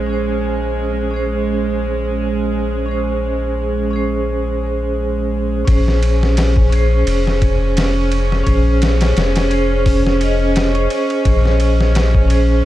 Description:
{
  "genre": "trip hop",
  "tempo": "86 BPM",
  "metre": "4/4",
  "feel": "swing 55% on 16ths",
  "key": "Bb minor",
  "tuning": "A4 = 442 Hz",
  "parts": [
    { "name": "vibraphone with medium hard mallets", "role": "accompaniment", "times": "0.0-12.7 s", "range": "Db4 to Eb5", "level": "-20 LUFS", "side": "right 1 dB", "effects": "tremolo, vintage 12-bit sampler grit, tape echo" },
    { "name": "dark studio string section", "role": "sustained chords", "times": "0.0-12.7 s", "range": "Ab3 to Db4", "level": "-23 LUFS", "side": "right 3 dB", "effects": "stereo widening" },
    { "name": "round analog bass", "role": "bass", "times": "0.0-12.6 s", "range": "F1 to Bb1", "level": "-17 LUFS", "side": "left 1 dB", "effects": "none" },
    { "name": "backwards swelling texture", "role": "texture", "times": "0.0-5.7 s", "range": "Db4", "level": "-33 LUFS", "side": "equal", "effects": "built-in reverb" },
    { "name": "trip hop sampler-style drum kit", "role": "drums", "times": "5.7-12.5 s", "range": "hi-hat, kick drum, ride cymbal, snare drum", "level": "-20 LUFS", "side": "equal", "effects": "none" }
  ],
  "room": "little or no reverb",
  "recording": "dark, warm production",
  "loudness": "-14 LUFS",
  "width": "side -14 dB against mid",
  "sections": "0.0-5.7 A section; 5.7-12.7 B section",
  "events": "filter sweep on string section 0.0-5.7",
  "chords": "0.0 Bbm7"
}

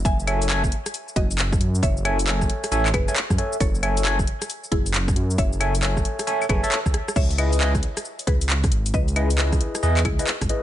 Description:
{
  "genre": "UK garage, two-step garage",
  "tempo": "135 BPM",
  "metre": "4/4",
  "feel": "swing 64% on 16ths",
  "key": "C# minor",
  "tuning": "A4 = 440 Hz",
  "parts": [
    { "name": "mallet-like synth pluck", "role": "melody", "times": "0.0-10.6 s", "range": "E4 to G#5", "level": "-32 LUFS", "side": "equal", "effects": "chorus, vintage 12-bit sampler grit, dub echo" },
    { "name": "dark detuned saw bass", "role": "bass", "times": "0.0-10.5 s", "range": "F#1 to F#2", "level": "-23 LUFS", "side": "equal", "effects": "sidechain pumping" },
    { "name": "electronic kick drum", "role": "drums", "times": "0.1-10.5 s", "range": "none", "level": "-23 LUFS", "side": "equal", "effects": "overdrive" },
    { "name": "house drum kit", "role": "drums", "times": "0.1-10.6 s", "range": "cabasa, claves, crash cymbal, handclaps, hi-hat, rim click", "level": "-26 LUFS", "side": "left 1 dB", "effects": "overdrive" },
    { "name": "overdriven tine electric piano", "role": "stabs", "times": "0.3-10.6 s", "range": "E4 to A5", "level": "-26 LUFS", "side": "equal", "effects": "phaser, dub echo" }
  ],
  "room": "digital ambience",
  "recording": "nothing above 10.6 kHz",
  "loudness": "-19 LUFS",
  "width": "side -12 dB against mid",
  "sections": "0.0-7.2 A section; 7.2-10.6 A section",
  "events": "drop 0.0-7.2, 7.2-10.6; drum fill 6.9",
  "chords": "0.0 F#m9; 7.2 C#m9"
}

